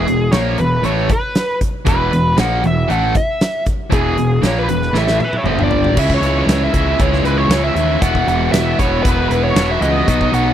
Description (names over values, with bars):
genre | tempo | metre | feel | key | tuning
classic rock | 117 BPM | 4/4 | straight | E major | A4 = 439 Hz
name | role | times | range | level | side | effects
biting lead guitar | melody | 0.0-10.5 s | G#4 to F#5 | -19 LUFS | equal | wah, overdrive
overdriven electric guitar | riff | 0.0-10.5 s | E2 to F#4 | -18 LUFS | equal | none
fuzz picked electric bass | bass | 0.0-10.5 s | E1 to D#2 | -18 LUFS | equal | overdrive
huge arena drum kit | drums | 0.1-10.5 s | crash cymbal, hi-hat, kick drum, snare drum, toms | -20 LUFS | equal | none
room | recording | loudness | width
little or no reverb | dry, close 1970s-style studio recording | -13 LUFS | side -10 dB against mid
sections
0.0-6.0 A section; 6.0-10.5 B section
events
drum fill 4.9-6.0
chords
0.0 E5; 5.5 G5; 6.0 C#m; 8.0 Esus2